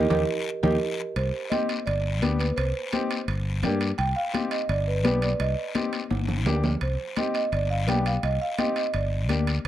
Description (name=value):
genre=latin, cumbia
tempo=170 BPM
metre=4/4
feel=straight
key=C minor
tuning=A4 = 439 Hz
part: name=marimba with medium mallets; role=melody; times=0.0-9.7 s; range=G4 to G5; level=-28 LUFS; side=right 3 dB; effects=none
part: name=bright upright piano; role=accompaniment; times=0.0-9.5 s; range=Bb3 to G4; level=-30 LUFS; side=left 4 dB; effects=none
part: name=fingered electric bass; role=bass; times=0.0-9.7 s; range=G1 to G2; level=-26 LUFS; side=equal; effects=none
part: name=congas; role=percussion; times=0.1-9.5 s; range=none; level=-31 LUFS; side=left 4 dB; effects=none
part: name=guiro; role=percussion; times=0.1-9.7 s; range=none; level=-37 LUFS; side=left 6 dB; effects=none
part: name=timbales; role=percussion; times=0.1-9.7 s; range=none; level=-34 LUFS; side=right 7 dB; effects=none
room=light reverb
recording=dry, close 1970s-style studio recording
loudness=-23 LUFS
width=side -12 dB against mid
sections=0.0-1.2 A section; 1.2-9.7 B section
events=band accent 0.0-1.2; drum fill 0.6-1.2, 6.1-6.8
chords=0.0 Eb; 1.2 Cm; 1.9 G; 2.6 Cm; 3.3 Gm; 4.0 Cm; 4.7 G; 5.4 Cm; 6.1 Gm; 6.8 Cm; 7.5 G; 8.2 Cm; 8.9 Gm